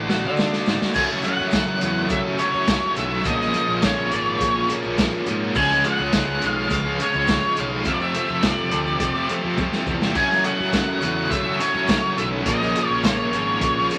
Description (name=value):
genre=psychedelic rock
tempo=104 BPM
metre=4/4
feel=straight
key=unclear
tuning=A4 = 444 Hz
part: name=octave-fuzz lead guitar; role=melody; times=0.0-13.9 s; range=C#5 to G#5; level=-25 LUFS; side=equal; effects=distortion
part: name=tonewheel organ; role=sustained chords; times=0.0-14.0 s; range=E#3 to D5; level=-34 LUFS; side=equal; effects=overdrive, stopped rotary speaker
part: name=overdriven electric guitar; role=riff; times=0.0-14.0 s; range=F2 to F#4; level=-26 LUFS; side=equal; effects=tremolo
part: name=fuzz fingered electric bass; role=bass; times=0.0-13.9 s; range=G#1 to D3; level=-32 LUFS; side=equal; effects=overdrive
part: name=vintage drum kit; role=drums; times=0.1-14.0 s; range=crash cymbal, hi-hat, kick drum, snare drum, toms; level=-26 LUFS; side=equal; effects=none
part: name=tube shaker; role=percussion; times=0.1-14.0 s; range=none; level=-53 LUFS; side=equal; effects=none
room=moderate club reverb, RT60 0.6 s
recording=vinyl crackle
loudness=-21 LUFS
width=mono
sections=1.0-14.0 A section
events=drum fill 0.0-1.0, 9.6-10.2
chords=0.0 D; 1.0 F#m7; 3.3 A#m7; 5.6 C#; 7.9 Fadd9; 10.2 F#m7; 12.5 A#m7